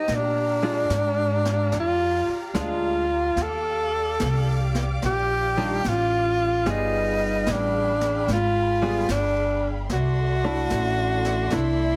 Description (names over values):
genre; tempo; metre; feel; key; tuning
jazz ballad; 73 BPM; 4/4; swing 67% on 8ths; unclear; A4 = 440 Hz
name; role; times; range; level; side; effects
warm tenor saxophone; melody; 0.0-12.0 s; D4 to A4; -26 LUFS; equal; plate reverb
warm symphonic string section; sustained chords; 0.0-12.0 s; G4 to D6; -37 LUFS; equal; none
upright bass; bass; 0.1-12.0 s; G1 to Bb2; -29 LUFS; equal; none
jazz brush drum kit; drums; 0.1-12.0 s; brushed snare drum, hi-hat, snare drum; -36 LUFS; equal; none
archtop guitar, miked and amplified; accompaniment; 0.6-12.0 s; Eb3 to Ab4; -30 LUFS; equal; none
room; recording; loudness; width
moderate club reverb, RT60 0.5 s; heavily compressed radio sound; -23 LUFS; mono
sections
0.0-12.0 A section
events
none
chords
0.1 Bb7; 3.4 Ebmaj9; 6.7 G7b9; 9.9 C69